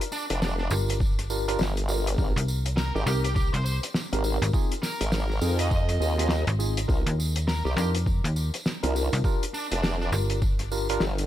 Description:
glitch hop; 102 BPM; 4/4; swing 61% on 16ths; A4 = 440 Hz
tine electric piano; stabs; 0.0-11.0 s; C4 to Bb4; -32 LUFS; equal; overdrive, medium stereo tremolo, sidechain pumping, ping-pong delay
cloth-damped thuddy drum kit; drums; 0.0-11.3 s; hi-hat, rim click, snare drum; -31 LUFS; left 1 dB
tambourine; percussion; 0.0-11.3 s; -38 LUFS; right 2 dB
smooth overdriven lead guitar; melody; 0.1-10.1 s; D4 to Eb5; -35 LUFS; right 1 dB; vintage 12-bit sampler grit, ping-pong delay
formant-sweep wobble bass; bass; 0.3-11.3 s; F1 to F2; -26 LUFS; equal; chorus, tube saturation
slap-like FM bass; bass; 0.7-11.0 s; G1 to F2; -26 LUFS; equal
electronic kick drum; drums; 1.0-10.6 s; -25 LUFS; equal; overdrive
light reverb; -23 LUFS; side -12 dB against mid
0.0-11.3 A section
0.0 Gm7; 2.2 Abmaj7; 4.5 Bb9sus4; 6.9 Cm11; 9.2 Gm7
0.42 1.01 1.60 | 2.18 2.77 3.36 3.95 | 4.54 5.13 5.71 6.30 | 6.89 7.48 8.07 8.65 | 9.24 9.83 10.42 11.01

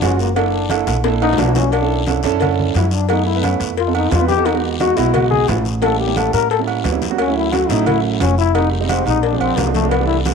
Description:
Afro-Cuban jazz; 176 BPM; 4/4; straight; A4 = 440 Hz
warm trombone; second line; 0.0-10.2 s; G3 to Bb4; -19 LUFS; left 11 dB
warm concert grand piano; accompaniment; 0.0-10.3 s; E3 to B4; -21 LUFS; right 13 dB
upright bass; bass; 0.0-10.3 s; E#1 to A2; -20 LUFS; equal
congas; percussion; 0.0-10.3 s; -26 LUFS; equal
cowbell and bongos; percussion; 0.0-10.3 s; -25 LUFS; left 13 dB
guiro; percussion; 0.0-10.3 s; -31 LUFS; left 11 dB
timbales and agogo bells; percussion; 0.0-10.3 s; -24 LUFS; right 12 dB
light reverb, studio reverb; 1960s-style stereo with parts hard left and right; -14 LUFS; side -6 dB against mid
0.0-1.7 A section; 1.7-10.3 A section
trombone solo 0.0-10.3; drum fill 0.9-1.7
0.4 Gb7alt; 1.7 Bm11; 3.1 F#m11; 3.8 F7#11; 4.5 Emaj9; 5.8 A7b9; 7.2 Dmaj9; 8.6 Fm7; 9.2 A#9
0.02 | 0.36 0.70 1.05 1.39 | 1.73 2.07 2.41 2.75 | 3.10 3.44 3.78 4.12 | 4.46 4.80 5.14 5.49 | 5.83 6.17 6.51 6.85 | 7.19 7.53 7.87 8.21 | 8.55 8.89 9.23 9.57 | 9.92 10.26

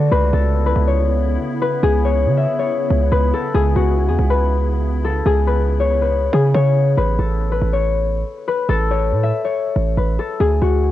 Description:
hip hop, drill; 140 BPM; 4/4; half-time; C# phrygian; A4 = 440 Hz
concert harp; melody; 0.0-10.9 s; F#4 to E5; -19 LUFS; left 5 dB; low-pass filter, cassette tape, analog delay
glassy FM pad; sustained chords; 0.0-6.9 s; C#3 to E4; -27 LUFS; equal; ensemble chorus, built-in reverb, cassette tape
hard-hitting 808-style bass; bass; 0.0-10.9 s; A1 to C#3; -17 LUFS; right 2 dB
little or no reverb; home recording on cassette, nothing above 10.7 kHz; -15 LUFS; side -13 dB against mid
0.0-7.0 A section; 7.0-10.9 B section
0.1 C#m7; 7.0 A; 10.4 D
| 0.12 0.55 0.97 1.40 | 1.83 2.26 2.69 3.12 | 3.54 3.97 4.40 4.83 | 5.26 5.69 6.12 6.54 | 6.97 7.40 7.83 8.26 | 8.69 9.12 9.54 9.97 | 10.40 10.83

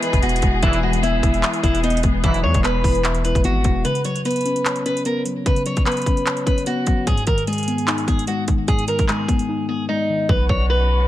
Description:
hip hop, trap; 149 BPM; 4/4; half-time; A4 = 440 Hz
picked acoustic archtop guitar; melody; 0.0-11.1 s; D#4 to C#5; -23 LUFS; equal; low-pass filter, tape echo
muted felt-like synth keys; accompaniment; 0.0-10.3 s; G#2 to E5; -23 LUFS; left 3 dB; chorus, low-pass filter
muted studio string section; sustained chords; 0.0-3.8, 10.3-11.1 s; E3 to G#4; -28 LUFS; left 2 dB
trap drum kit; drums; 0.0-10.6 s; handclaps, hi-hat, kick drum; -21 LUFS; equal; overdrive
long sustained 808-style bass; bass; 0.1-3.8, 10.3-11.1 s; E1 to E2; -20 LUFS; equal
dark brass ensemble; stabs; 0.6-2.6 s; B1 to E3; -27 LUFS; right 1 dB
soft octave-layered synth lead; second line; 1.0-3.0 s; B4 to E5; -32 LUFS; left 2 dB
digital ambience; -17 LUFS; side -13 dB against mid
0.0-3.8 A section; 3.8-10.3 B section
break 9.5-10.3; hi-hats muted 10.3-11.1
0.0 E; 3.8 Bsus2; 7.1 G#m; 10.3 Bsus2
0.23 | 0.63 1.03 1.43 1.84 | 2.24 2.64 3.04 3.45 | 3.85 4.25 4.66 5.06 | 5.46 5.86 6.26 6.67 | 7.07 7.47 7.88 8.28 | 8.68 9.08 9.49 9.89 | 10.29 10.70

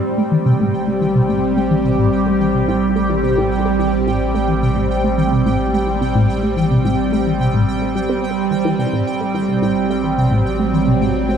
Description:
ambient, sequencer-driven space music; 108 BPM; 4/4; straight; A dorian; A4 = 438 Hz
evolving wavetable pad; sustained chords; 0.0-11.4 s; F#3 to G4; -17 LUFS; right 2 dB; phaser, built-in reverb
round analog bass; bass; 0.0-11.4 s; A1; -26 LUFS; equal
pulsing gated texture; texture; 0.2-11.4 s; G5; -29 LUFS; right 3 dB; chorus, built-in reverb
resonant blip pluck; riff; 0.2-11.4 s; A2 to C4; -19 LUFS; left 1 dB; phaser, ping-pong delay
wet lush hall reverb, RT60 2.9 s; dreamy mix soaked in reverb, cassette tape; -14 LUFS; side -8 dB against mid
0.0-11.4 A section
filter sweep on synth arpeggio sound 0.0-11.4
0.0 Am7
0.46 1.02 1.57 | 2.13 2.68 3.24 3.79 | 4.35 4.91 5.46 6.02 | 6.57 7.13 7.68 8.24 | 8.79 9.35 9.90 10.46 | 11.02

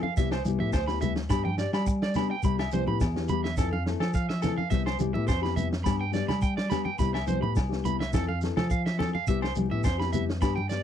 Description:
highlife guitar band; 106 BPM; 4/4; straight; C major; A4 = 439 Hz
nylon-string guitar; accompaniment; 0.0-10.8 s; E3 to A4; -32 LUFS; left 13 dB
electric guitar at the edge of break-up; arpeggios; 0.0-10.8 s; A4 to B5; -33 LUFS; right 8 dB; slapback echo
tine electric piano; bass; 0.0-10.8 s; C2 to G3; -30 LUFS; equal
congas; percussion; 0.0-10.7 s; -34 LUFS; right 3 dB
vintage drum kit; drums; 0.2-10.8 s; kick drum, snare drum; -30 LUFS; equal
shekere; percussion; 0.2-10.8 s; -34 LUFS; right 3 dB
agogo bells; percussion; 0.3-10.6 s; -39 LUFS; left 22 dB
little or no reverb; dry, close 1970s-style studio recording; -25 LUFS; side -9 dB against mid
0.0-10.8 A section
0.2 Cmaj7; 1.3 G; 2.4 Cmaj7; 3.6 Fmaj7; 4.7 Cmaj7; 5.9 G; 7.0 Cmaj7; 8.1 Fmaj7; 9.3 Cmaj7
| 0.17 0.74 1.31 1.88 | 2.44 3.01 3.58 4.15 | 4.72 5.29 5.86 6.42 | 6.99 7.56 8.13 8.70 | 9.27 9.85 10.42

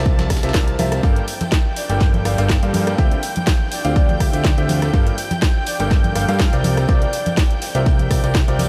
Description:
piano house; 123 BPM; 4/4; swing 54% on 16ths; G dorian; A4 = 440 Hz
clear studio violin section; sustained chords; 0.0-8.7 s; G5 to A6; -31 LUFS; equal; sidechain pumping
bright concert grand piano; riff; 0.0-8.7 s; G2 to G5; -27 LUFS; equal; sidechain pumping, diffuse ambient delay
fat analog bass; bass; 0.0-8.7 s; G1 to G2; -23 LUFS; equal; sidechain pumping
dusty soul sampler-style drum kit; drums; 0.0-8.7 s; hi-hat, snare drum; -38 LUFS; equal
electronic kick drum; drums; 0.1-8.5 s; -19 LUFS; equal; overdrive
tambourine and congas; percussion; 0.1-8.7 s; -30 LUFS; equal
house drum kit; drums; 0.2-8.7 s; hi-hat, rim click, snare drum; -28 LUFS; equal; overdrive
breathy flute-like synth lead; melody; 1.8-7.4 s; D5 to F5; -34 LUFS; equal
light reverb; -18 LUFS; mono
0.0-8.7 A section
0.0 C7sus4; 1.0 Gm9; 3.0 Dm11; 4.9 Gm9; 6.6 C9sus4
0.06 0.55 | 1.03 1.52 2.01 2.50 | 2.98 3.47 3.96 4.45 | 4.94 5.42 5.91 6.40 | 6.89 7.38 7.86 8.35

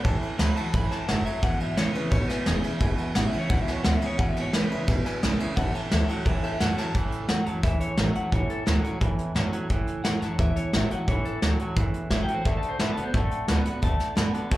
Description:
rockabilly; 174 BPM; 4/4; straight; A major; A4 = 439 Hz
picked steel-string acoustic guitar; accompaniment; 0.0-14.6 s; E2 to F#4; -33 LUFS; left 1 dB
warm upright piano; accompaniment; 0.0-6.9 s; B4 to B5; -39 LUFS; equal; slapback echo
twangy electric guitar; riff; 0.0-14.6 s; E2 to B3; -32 LUFS; right 2 dB; slapback echo
soft brush drum kit; drums; 0.0-14.6 s; hi-hat, kick drum, ride cymbal, snare drum; -26 LUFS; equal
upright bass; bass; 0.1-14.6 s; E1 to B2; -29 LUFS; equal
electric guitar through a small old amp; melody; 0.4-14.6 s; G#4 to B5; -33 LUFS; left 2 dB; spring reverb, slapback echo, tape echo
little or no reverb; live gig heard through the venue's PA, club reverb; -23 LUFS; side -16 dB against mid
0.0-7.0 A section; 7.0-14.6 B section
clean electric guitar solo 0.0-7.0
0.0 A6; 1.4 E6; 5.6 A6; 12.5 D6
| 0.04 0.39 0.74 1.08 | 1.43 1.77 2.12 2.47 | 2.81 3.16 3.50 3.85 | 4.19 4.54 4.88 5.23 | 5.57 5.92 6.26 6.61 | 6.95 7.29 7.64 7.98 | 8.33 8.67 9.02 9.36 | 9.70 10.05 10.39 10.74 | 11.08 11.42 11.77 12.11 | 12.45 12.80 13.14 13.48 | 13.83 14.17 14.52

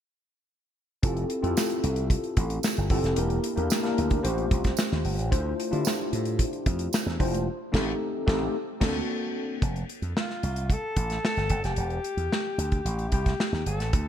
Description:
polished 1980s jazz-funk pop; 112 BPM; 4/4; straight; F major; A4 = 441 Hz
mellow tine electric piano; accompaniment; 1.0-9.6 s; A3 to B#4; -28 LUFS; left 2 dB; analog chorus
slap bass with an envelope filter; bass; 1.0-14.1 s; E1 to D3; -29 LUFS; right 1 dB
modern studio drum kit; drums; 1.0-14.1 s; crash cymbal, hi-hat, kick drum, snare drum; -28 LUFS; equal
tambourine; percussion; 1.6-7.1 s; -36 LUFS; right 13 dB
breathy alto saxophone; melody; 10.2-14.1 s; F4 to A4; -31 LUFS; left 2 dB
moderate plate reverb, RT60 2.2 s; bright 1980s-style digital production; -25 LUFS; side -10 dB against mid
1.0-9.6 A section; 9.6-14.1 B section
band accent 7.5-9.6
1.0 Fmaj9; 3.2 Em7b5; 4.2 A7alt; 5.3 Dm9; 7.5 Am7b5; 8.5 D7b13; 9.6 Fadd9; 11.8 Em7; 12.9 Gsus24
| 1.03 1.56 2.10 2.64 | 3.17 3.71 4.25 4.78 | 5.32 5.86 6.39 6.93 | 7.47 8.01 8.54 9.08 | 9.62 10.16 10.70 11.24 | 11.78 12.31 12.85 13.39 | 13.93

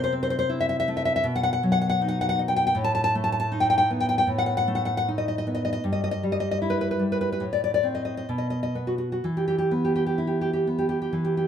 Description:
romantic piece for solo classical guitar; 61-81 BPM; 4/4; rubato; E minor; A4 = 440 Hz
nylon-string guitar; solo; 0.0-11.5 s; G2 to A5; -22 LUFS; left 1 dB
moderate stone room reverb, RT60 1.1 s; band playing live in one room; -22 LUFS; side -8 dB against mid
0.0-11.5 A section
0.0 Am/C; 1.3 B; 2.8 B7/A; 5.8 Em/G; 7.5 Adim; 8.3 N.C.; 9.2 E5
0.51 1.25 2.01 | 2.78 3.53 4.30 5.07 | 5.84 6.63 7.45 8.30 | 9.23 10.19 11.14

